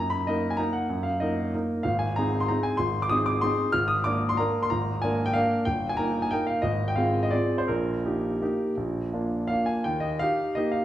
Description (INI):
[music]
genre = classical, piano waltz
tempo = 163-208 BPM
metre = 3/4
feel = rubato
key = Eb major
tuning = A4 = 438 Hz
[part]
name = clear grand piano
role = solo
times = 0.0-10.8 s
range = G1 to F6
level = -24 LUFS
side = equal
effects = none
[sound]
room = wet recital hall reverb, RT60 1.4 s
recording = heard from further back in the room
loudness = -24 LUFS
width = side -12 dB against mid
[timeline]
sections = 0.0-9.9 A section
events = none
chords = 0.0 Ebm/Gb; 1.9 Abadd9; 3.7 Bb7/Ab; 5.7 Eb/G; 6.6 Fm/Ab; 7.7 Eb/Bb; 8.8 Bb; 9.9 Eb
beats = 0.27 0.59 | 0.90 1.21 1.54 | 1.86 2.18 2.50 | 2.80 3.11 3.43 | 3.74 4.06 4.39 | 4.71 5.03 5.36 | 5.67 5.98 6.31 | 6.64 6.98 7.33 | 7.69 8.04 8.41 | 8.77 9.14 9.50 | 9.86 10.21 10.56